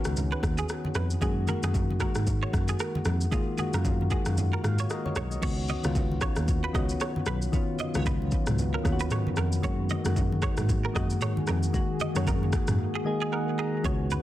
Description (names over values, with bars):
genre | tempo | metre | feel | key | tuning
afrobeats | 114 BPM | 4/4 | swing 58% on 16ths | F# major | A4 = 440 Hz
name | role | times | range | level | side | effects
soft electric-piano-like synth keys | accompaniment | 0.0-14.2 s | D#3 to A#5 | -32 LUFS | left 2 dB | chorus
afro-pop drum kit | drums | 0.0-14.2 s | crash cymbal, kick drum, rim click, shaker, toms | -30 LUFS | equal | vintage 12-bit sampler grit
tine electric piano | bass | 0.1-14.1 s | B1 to G#2 | -29 LUFS | equal | medium stereo tremolo
congas | percussion | 0.2-14.2 s | none | -37 LUFS | right 1 dB | none
direct-recorded clean electric guitar | riff | 0.3-14.2 s | G#4 to D#5 | -36 LUFS | right 6 dB | ensemble chorus, digital delay
deep dark ambient pad | sustained chords | 6.7-14.2 s | D#3 to G#4 | -37 LUFS | equal | chorus, built-in reverb
room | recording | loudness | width
digital ambience | dense, heavily limited modern master | -25 LUFS | side -14 dB against mid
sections
0.0-5.4 A section; 5.4-13.8 B section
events
kick muted 4.4-5.4; synth keys fill 4.4-5.4, 12.8-13.8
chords
0.0 C#9sus4; 9.6 F#69